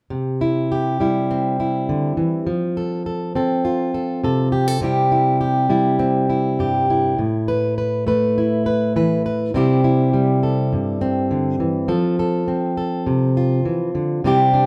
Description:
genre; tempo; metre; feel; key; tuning
folk; 102 BPM; 4/4; straight; C major; A4 = 440 Hz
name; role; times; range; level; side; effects
fingerpicked plugged-in steel-string acoustic guitar; solo; 0.1-14.7 s; G2 to B4; -19 LUFS; equal; none
room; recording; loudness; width
moderate large studio reverb, RT60 1.1 s; band playing live in one room; -19 LUFS; mono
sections
0.1-9.5 A section; 9.5-14.7 B section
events
none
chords
0.1 C; 2.5 F; 4.8 C; 7.2 Asus2; 9.5 C; 11.9 F

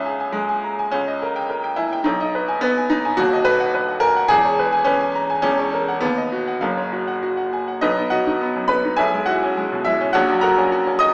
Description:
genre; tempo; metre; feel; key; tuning
classical, virtuoso piano study; 99-109 BPM; 2/4; rubato; G# minor, B major from 3.2 s; A4 = 442 Hz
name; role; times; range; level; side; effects
bright baby grand piano; solo; 0.0-11.1 s; D#1 to D#6; -20 LUFS; equal; none
room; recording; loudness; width
moderate large studio reverb, RT60 1.1 s; heard from further back in the room, small speaker sound; -20 LUFS; mono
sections
0.0-7.8 A section; 7.8-11.1 B section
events
none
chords
0.0 C#m; 0.9 D#7/C#; 2.1 G#m/B; 3.2 B/D#; 4.3 C#m7/E; 5.4 F#7/E; 6.0 B/D#; 6.6 F#; 7.8 B; 9.0 C#m7/B; 10.1 F#/A#

